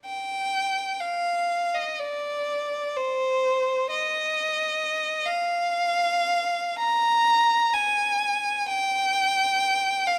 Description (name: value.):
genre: classical, free, expressive piece for unaccompanied violin.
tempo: 52-67 BPM.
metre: 3/4.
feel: rubato.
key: unclear.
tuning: A4 = 438 Hz.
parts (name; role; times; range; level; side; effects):
clear violin; solo; 0.1-10.2 s; C5 to Bb5; -24 LUFS; equal; none.
room: moderate recital hall reverb, RT60 1.4 s.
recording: vinyl crackle.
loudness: -25 LUFS.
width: mono.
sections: 0.0-10.2 A section.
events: none.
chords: none.